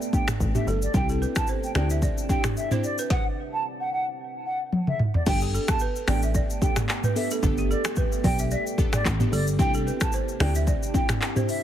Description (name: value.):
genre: afrobeats.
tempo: 111 BPM.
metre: 4/4.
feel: swing 55% on 16ths.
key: G major.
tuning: A4 = 440 Hz.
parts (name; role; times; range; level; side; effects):
deep dark ambient pad; sustained chords; 0.0-11.6 s; C3 to A4; -36 LUFS; right 2 dB; chorus, built-in reverb.
afro-pop drum kit; drums; 0.0-11.6 s; crash cymbal, finger snaps, handclaps, hi-hat, kick drum, rim click, shaker, snare drum, toms; -25 LUFS; equal; none.
mellow hollow silver concert flute; melody; 0.1-11.6 s; D5 to A5; -31 LUFS; right 1 dB; tape echo.
glassy digital keys; accompaniment; 0.1-11.5 s; A3 to A4; -31 LUFS; left 1 dB; chorus.
plucky analog bass; bass; 0.4-10.7 s; G1 to D2; -25 LUFS; equal; none.
balafon; riff; 0.7-11.4 s; G4 to E5; -34 LUFS; right 6 dB; tape echo.
room: digital ambience.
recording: heavily compressed radio sound, multiband compression.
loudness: -22 LUFS.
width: side -11 dB against mid.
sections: 0.0-5.3 A section; 5.3-11.6 B section.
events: drum fill 4.7-5.3.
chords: 0.0 Gadd9; 0.9 Cadd9; 3.1 N.C.; 5.3 Gadd9; 9.6 Cadd9.